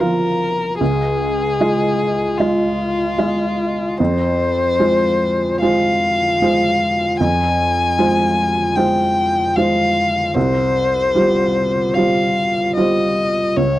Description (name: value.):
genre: neoclassical piano and strings.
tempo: 75 BPM.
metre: 4/4.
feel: rubato.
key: F minor.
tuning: A4 = 440 Hz.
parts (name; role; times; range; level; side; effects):
warm violin; melody; 0.0-13.8 s; F4 to Ab5; -18 LUFS; left 2 dB; none.
felt-muted upright piano; accompaniment; 0.0-13.8 s; C2 to F5; -17 LUFS; right 1 dB; none.
room: light reverb.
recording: dry, close 1970s-style studio recording.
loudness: -15 LUFS.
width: side -15 dB against mid.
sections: 0.0-13.8 A section.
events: none.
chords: 0.0 Csus4; 0.8 Dbadd9; 4.0 Fm; 10.4 Csus4.